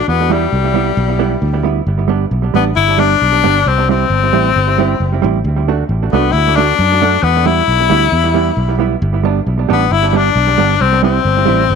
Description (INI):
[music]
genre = ska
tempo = 134 BPM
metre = 4/4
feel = straight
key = G major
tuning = A4 = 440 Hz
[part]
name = breathy tenor saxophone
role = melody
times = 0.0-11.8 s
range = G3 to E4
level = -14 LUFS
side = left 10 dB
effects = none
[part]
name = fingered electric bass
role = bass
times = 0.1-11.8 s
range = F#1 to F#2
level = -16 LUFS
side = equal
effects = none
[part]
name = hollow-body jazz guitar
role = accompaniment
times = 0.3-11.6 s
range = G3 to F#4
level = -17 LUFS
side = right 11 dB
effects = tape echo
[sound]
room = moderate echo chamber reverb, RT60 1.2 s, small room ambience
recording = 1960s-style stereo with parts hard left and right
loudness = -11 LUFS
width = side -6 dB against mid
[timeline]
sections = 0.0-1.9 A section; 1.9-11.8 B section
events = none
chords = 0.1 Em; 1.9 G; 3.7 C; 5.4 D; 7.2 Em; 9.0 G; 10.8 C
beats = | 0.07 0.52 0.97 1.42 | 1.86 2.31 2.76 3.21 | 3.65 4.10 4.55 5.00 | 5.44 5.89 6.33 6.78 | 7.23 7.67 8.12 8.57 | 9.01 9.46 9.90 10.35 | 10.80 11.24 11.69